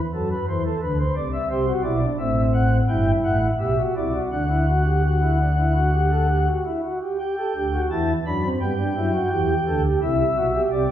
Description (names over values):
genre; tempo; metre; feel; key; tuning
classical, baroque-style 3-part fugue for pipe organ; 85 BPM; 4/4; straight; G major; A4 = 440 Hz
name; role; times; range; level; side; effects
pipe organ, flutes; solo; 0.1-10.9 s; G1 to B5; -19 LUFS; equal; none
room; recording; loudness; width
wet recital hall reverb, RT60 1.4 s; heard from further back in the room; -19 LUFS; side -10 dB against mid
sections
0.0-7.2 A section; 7.2-10.9 B section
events
none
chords
0.1 F#dim; 1.5 Am7; 4.3 D; 7.2 G; 10.0 C